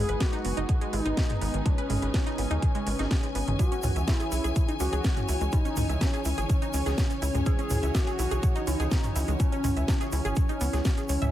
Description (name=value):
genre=melodic techno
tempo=124 BPM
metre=4/4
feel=straight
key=C# minor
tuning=A4 = 440 Hz
part: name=wide unison lead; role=melody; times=0.0-11.3 s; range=C#4 to G#4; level=-34 LUFS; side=equal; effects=cassette tape, sidechain pumping, ping-pong delay
part: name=dark detuned synth bell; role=second line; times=0.0-11.3 s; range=C#4 to G#4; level=-38 LUFS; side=left 1 dB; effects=none
part: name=lush unison pad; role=sustained chords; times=0.0-11.3 s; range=C#3 to D#5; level=-38 LUFS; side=equal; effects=chorus, sidechain pumping
part: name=wide unison pluck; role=arpeggios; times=0.0-11.3 s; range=D#3 to E5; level=-35 LUFS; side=right 1 dB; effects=sidechain pumping, dub echo
part: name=tight sequencer bass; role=bass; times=0.0-11.3 s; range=F#1 to D#2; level=-29 LUFS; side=equal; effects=sidechain pumping
part: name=warm symphonic string section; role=texture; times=0.0-11.3 s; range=C#4 to G#5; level=-38 LUFS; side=left 3 dB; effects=sidechain pumping
part: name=house drum kit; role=drums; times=0.1-11.3 s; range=hi-hat, snare drum, toms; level=-33 LUFS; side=right 1 dB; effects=sidechain pumping on hats, sidechain pumping on toms
part: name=electronic kick drum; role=drums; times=0.2-10.9 s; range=none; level=-25 LUFS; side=equal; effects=none
part: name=tube shaker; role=percussion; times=3.6-11.3 s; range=none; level=-43 LUFS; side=right 1 dB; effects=none
room=little or no reverb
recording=none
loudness=-24 LUFS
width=side -12 dB against mid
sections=0.0-11.3 A section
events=none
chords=0.0 G#m; 3.6 C#m